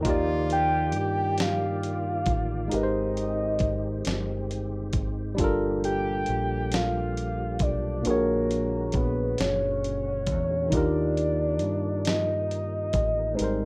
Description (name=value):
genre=slow six-eight R&B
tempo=45 BPM (dotted quarters)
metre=6/8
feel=straight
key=unclear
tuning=A4 = 440 Hz
part: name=barky tine electric piano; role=accompaniment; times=0.0-13.7 s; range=Bb2 to D5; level=-32 LUFS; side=equal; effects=none
part: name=percussive tonewheel organ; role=sustained chords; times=0.0-13.7 s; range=Bb2 to D5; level=-42 LUFS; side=equal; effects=none
part: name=dusty soul sampler-style drum kit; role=drums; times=0.0-13.6 s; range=hi-hat, kick drum, snare drum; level=-32 LUFS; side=equal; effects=overdrive
part: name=warm horn section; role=stabs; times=0.1-2.2 s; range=F3 to G4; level=-38 LUFS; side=equal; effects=none
part: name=deep dub picked electric bass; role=bass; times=0.1-13.7 s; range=F#1 to G2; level=-34 LUFS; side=equal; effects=none
part: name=soft octave-layered synth lead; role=melody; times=0.5-13.7 s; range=Bb4 to G5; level=-31 LUFS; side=equal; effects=chorus, phaser
room=light reverb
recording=rough home demo mix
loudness=-27 LUFS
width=mono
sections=0.0-5.4 A section; 5.4-13.7 A section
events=none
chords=0.1 Ebmaj7; 2.7 Abmaj7; 5.4 Gm9; 8.1 Bb7alt; 10.7 Ebmaj7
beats=| 0.05 1.39 | 2.72 4.05 | 5.38 6.72 | 8.05 9.38 | 10.72 12.05 | 13.38